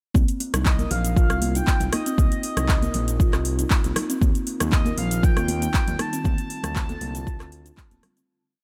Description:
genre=afro house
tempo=118 BPM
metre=4/4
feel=swing 54% on 16ths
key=C dorian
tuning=A4 = 441 Hz
part: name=kalimba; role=arpeggios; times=0.1-8.3 s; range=G3 to Bb4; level=-33 LUFS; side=equal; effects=sidechain pumping, tape echo
part: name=smooth gliding synth bass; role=bass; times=0.1-8.0 s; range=D1 to Eb2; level=-29 LUFS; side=equal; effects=sidechain pumping
part: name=electronic kick drum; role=drums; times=0.1-7.9 s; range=none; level=-23 LUFS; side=equal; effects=none
part: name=congas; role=percussion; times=0.1-8.1 s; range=none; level=-34 LUFS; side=equal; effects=none
part: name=afro-pop drum kit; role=drums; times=0.2-8.3 s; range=handclaps, hi-hat, rim click, shaker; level=-31 LUFS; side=equal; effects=none
part: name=expressive synth lead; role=melody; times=0.7-8.0 s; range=Eb5 to A5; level=-34 LUFS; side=equal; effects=analog chorus, tape echo
part: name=ethereal airy pad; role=sustained chords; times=5.2-8.3 s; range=D3 to F4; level=-42 LUFS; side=equal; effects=none
room=little or no reverb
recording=none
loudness=-23 LUFS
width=mono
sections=0.1-8.3 drop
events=drop 0.1-8.3; fade-out 5.6-8.3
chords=0.1 Cm; 4.2 Ebadd9; 6.2 Dm7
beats=| 0.15 0.66 1.17 1.67 | 2.18 2.69 3.20 3.71 | 4.22 4.72 5.23 5.74 | 6.25 6.76 7.27 7.78

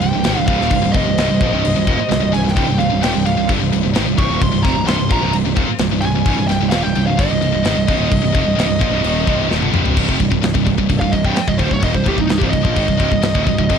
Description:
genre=heavy metal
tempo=130 BPM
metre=4/4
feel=straight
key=C minor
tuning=A4 = 440 Hz
part: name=high-gain lead guitar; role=melody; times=0.0-13.8 s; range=Eb4 to Db6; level=-21 LUFS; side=right 1 dB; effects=distortion, ping-pong delay
part: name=warm studio string section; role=sustained chords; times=0.0-9.9 s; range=Eb3 to C5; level=-31 LUFS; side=left 4 dB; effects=none
part: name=heavy high-gain guitar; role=riff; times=0.0-13.8 s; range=C2 to F3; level=-22 LUFS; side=left 16 dB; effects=distortion
part: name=high-gain distorted guitar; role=riff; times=0.0-13.8 s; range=C2 to F3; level=-19 LUFS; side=right 12 dB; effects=distortion
part: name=fuzz picked electric bass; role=bass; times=0.0-13.8 s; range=C1 to Bb1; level=-21 LUFS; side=left 2 dB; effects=overdrive
part: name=tight metal drum kit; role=drums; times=0.0-13.8 s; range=crash cymbal, kick drum, snare drum, toms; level=-20 LUFS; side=left 2 dB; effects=none
room=small room ambience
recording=dark, warm production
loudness=-14 LUFS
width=side -7 dB against mid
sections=0.0-10.0 A section; 10.0-13.8 B section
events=drum fill 9.5-10.0; lead electric guitar solo 10.0-13.8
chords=0.0 Cm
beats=0.26 | 0.72 1.18 1.64 2.10 | 2.56 3.03 3.49 3.95 | 4.42 4.88 5.34 5.80 | 6.27 6.73 7.19 7.66 | 8.12 8.59 9.05 9.51 | 9.98 10.44 10.91 11.37 | 11.84 12.30 12.77 13.23 | 13.70

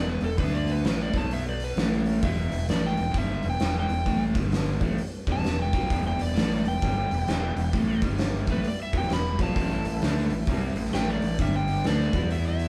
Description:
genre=blues rock power trio and southern rock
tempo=131 BPM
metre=4/4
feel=swing 63% on 8ths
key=E minor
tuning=A4 = 443 Hz
part: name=overdriven slide guitar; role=melody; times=0.0-12.7 s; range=A4 to B5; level=-35 LUFS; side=equal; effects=none
part: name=crunchy overdriven guitar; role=riff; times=0.0-12.7 s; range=E2 to E4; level=-32 LUFS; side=equal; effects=none
part: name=fuzz fingered electric bass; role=bass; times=0.0-12.7 s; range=E1 to E2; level=-31 LUFS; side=equal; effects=overdrive
part: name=oversized low-tuned drum kit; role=drums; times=0.2-12.7 s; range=hi-hat, kick drum, snare drum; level=-30 LUFS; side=equal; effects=none
part: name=overdriven tonewheel organ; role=sustained chords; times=5.9-12.7 s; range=G3 to G5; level=-45 LUFS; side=equal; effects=none
room=wet studio reverb, RT60 0.6 s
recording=band playing live in one room, cassette tape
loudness=-26 LUFS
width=mono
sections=0.0-12.7 A section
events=electric slide guitar solo 0.0-12.7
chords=0.4 D5; 0.8 E5; 1.1 B5; 1.8 A5; 2.2 Em; 4.3 G5; 4.8 Em; 8.0 G5; 8.4 Em; 9.6 A5; 11.4 G5; 11.8 D5; 12.1 E5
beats=| 0.39 0.85 1.31 1.77 | 2.23 2.69 3.15 3.60 | 4.06 4.52 4.98 5.44 | 5.90 6.36 6.82 7.27 | 7.73 8.19 8.65 9.10 | 9.56 10.02 10.48 10.93 | 11.39 11.85 12.30

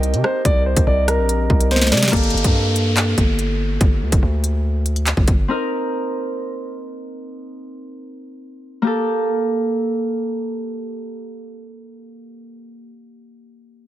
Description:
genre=hip hop, drill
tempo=143 BPM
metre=4/4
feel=half-time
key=G minor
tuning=A4 = 440 Hz
part: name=dark grand piano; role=melody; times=0.0-2.1 s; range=Bb4 to G5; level=-22 LUFS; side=equal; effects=low-pass filter, digital delay
part: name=Celtic harp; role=accompaniment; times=0.0-12.9 s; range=Bb3 to Bb4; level=-24 LUFS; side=equal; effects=low-pass filter
part: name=glass harmonica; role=sustained chords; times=0.0-2.1 s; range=C4 to Eb5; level=-28 LUFS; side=right 1 dB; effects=none
part: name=distorted 808-style bass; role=bass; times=0.0-5.5 s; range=F#1 to C3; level=-19 LUFS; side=equal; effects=distortion
part: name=drill drum kit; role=drums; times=0.0-5.4 s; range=handclaps, hi-hat, kick drum, rim click, snare drum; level=-17 LUFS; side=equal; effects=none
part: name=downlifter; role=sound effects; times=2.1-5.5 s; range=none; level=-27 LUFS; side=equal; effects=none
room=light reverb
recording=none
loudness=-16 LUFS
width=side -13 dB against mid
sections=0.0-2.1 A section; 2.1-8.8 B section; 8.8-12.2 C section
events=drum fill 1.7-2.1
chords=0.0 Cm7; 2.1 Gmadd9; 5.5 Cm7; 8.8 Gmadd9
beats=0.03 | 0.45 0.87 1.29 1.71 | 2.13 2.55 2.97 3.39 | 3.81 4.23 4.65 5.07 | 5.49 5.91 6.33 6.75 | 7.16 7.58 8.00 8.42 | 8.84 9.26 9.68 10.10 | 10.52 10.94 11.36 11.78

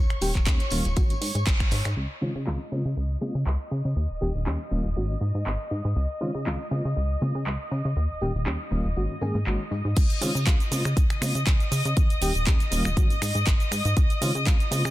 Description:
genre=filtered disco house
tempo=120 BPM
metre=4/4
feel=swing 54% on 16ths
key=Db major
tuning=A4 = 438 Hz
part: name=muted studio violin section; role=sustained chords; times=0.0-14.9 s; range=Db5 to Eb6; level=-34 LUFS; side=equal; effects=sidechain pumping, low-pass filter
part: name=plucky analog bass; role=bass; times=0.0-14.9 s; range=Eb1 to Db3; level=-26 LUFS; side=equal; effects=sidechain pumping, low-pass filter
part: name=house drum kit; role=drums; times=0.1-14.9 s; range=cabasa, crash cymbal, finger snaps, handclaps, hi-hat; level=-32 LUFS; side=right 2 dB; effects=sidechain pumping on hats, low-pass filter on hats, low-pass filter on snare, sidechain pumping on cymbals, low-pass filter on cymbals, sidechain pumping on perc, low-pass filter on perc
part: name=reed electric piano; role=accompaniment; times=0.2-14.8 s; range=Db3 to Ab4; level=-31 LUFS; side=equal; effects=fast tremolo, phaser, sidechain pumping, low-pass filter
part: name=tambourine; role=percussion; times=0.2-1.9, 6.0-9.9 s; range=none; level=-41 LUFS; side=left 3 dB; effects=sidechain pumping on perc, low-pass filter on perc
part: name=electronic kick drum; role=drums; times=0.4-1.7, 10.0-14.6 s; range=none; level=-22 LUFS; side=equal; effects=none
room=digital ambience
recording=dense, heavily limited modern master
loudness=-23 LUFS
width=side -16 dB against mid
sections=0.0-2.0 A section; 2.0-10.0 B section; 10.0-14.9 C section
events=band accent 1.5; filter sweep 2.0-10.0; drop 10.0-14.9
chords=0.0 Eb7; 1.0 Ab9sus4; 2.0 Dbmaj9; 2.7 Bbm9/Db; 4.0 Eb7; 5.0 Ab9sus4; 6.0 Dbmaj9; 6.7 Bbm9/Db; 8.0 Eb7; 9.0 Ab9sus4; 10.0 Dbmaj9; 10.7 Bbm9/Db; 12.0 Eb7; 13.0 Ab9sus4; 14.0 Dbmaj9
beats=0.47 0.96 1.47 | 1.97 2.46 2.96 3.46 | 3.96 4.46 4.96 5.46 | 5.96 6.46 6.96 7.46 | 7.96 8.46 8.96 9.46 | 9.96 10.46 10.96 11.46 | 11.96 12.46 12.96 13.46 | 13.96 14.46

